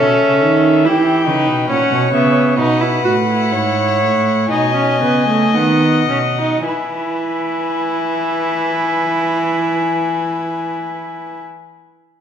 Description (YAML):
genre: classical, baroque-style fugue for string quartet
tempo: 52-72 BPM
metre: 4/4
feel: straight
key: E major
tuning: A4 = 440 Hz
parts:
  - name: dark violin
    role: melody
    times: 0.0-11.4 s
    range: E5 to G#5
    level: -21 LUFS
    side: left 8 dB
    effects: none
  - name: dark violin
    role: second line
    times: 0.0-11.4 s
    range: G4 to D#5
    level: -21 LUFS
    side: left 2 dB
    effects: none
  - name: rich viola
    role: accompaniment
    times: 0.0-11.4 s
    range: A3 to F#4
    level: -18 LUFS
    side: right 2 dB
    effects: none
  - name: rich cello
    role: bass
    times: 0.0-11.4 s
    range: G#2 to E3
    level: -19 LUFS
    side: right 4 dB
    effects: none
room: wet recital hall reverb, RT60 1.7 s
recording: minimal, uncompressed stereo recording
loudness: -13 LUFS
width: side -8 dB against mid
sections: 0.0-6.7 A section; 6.7-11.3 B section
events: slowing down 0.0-6.7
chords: 0.0 B9sus4; 0.9 A#dim7 (rootless); 2.6 B7sus4; 4.5 B7; 6.7 E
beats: 0.02 0.86 1.70 | 2.59 3.53 4.51 5.55 | 6.66 7.81 8.96 10.11